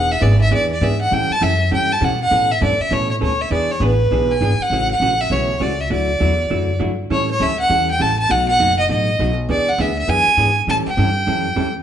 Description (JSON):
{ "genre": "country, western swing", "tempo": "201 BPM", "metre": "4/4", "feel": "swing 61% on 8ths", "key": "unclear", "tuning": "A4 = 435 Hz", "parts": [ { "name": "clear fiddle", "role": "melody", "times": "0.0-11.7 s", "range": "B4 to A5", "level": "-18 LUFS", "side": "right 1 dB", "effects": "none" }, { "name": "vintage hollow-body jazz guitar", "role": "accompaniment", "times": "0.0-11.7 s", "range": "B2 to A4", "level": "-22 LUFS", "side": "right 1 dB", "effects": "none" }, { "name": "upright bass", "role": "bass", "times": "0.0-11.8 s", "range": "E1 to B2", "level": "-20 LUFS", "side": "equal", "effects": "none" } ], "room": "wet large studio reverb, RT60 1.0 s", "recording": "band playing live in one room, nothing above 10.7 kHz", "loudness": "-15 LUFS", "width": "side -9 dB against mid", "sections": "0.0-7.1 A section; 7.1-11.8 B section", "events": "none", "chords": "0.0 E7; 1.1 A7; 2.3 Aadd9; 3.5 E7; 4.7 A6; 5.9 Dadd9; 7.1 A6; 8.3 B7; 9.5 E7; 10.7 A7" }